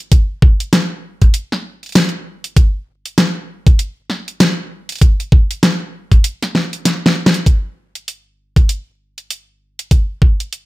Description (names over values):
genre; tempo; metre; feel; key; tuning
glitch hop; 98 BPM; 4/4; swing 59% on 16ths; none; none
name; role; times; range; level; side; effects
dubstep drum kit; drums; 0.1-10.7 s; hi-hat, snare drum; -14 LUFS; equal; small room ambience
electronic kick drum; drums; 0.1-10.4 s; none; -10 LUFS; equal; small room ambience
room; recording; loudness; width
light reverb; dark, warm production; -13 LUFS; side -19 dB against mid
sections
0.0-7.5 A section; 7.5-10.7 B section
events
drum fill 6.9-7.5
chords
none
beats
| 0.12 0.73 1.34 1.95 | 2.56 3.18 3.79 4.40 | 5.01 5.63 6.24 6.85 | 7.46 8.07 8.69 9.30 | 9.91 10.52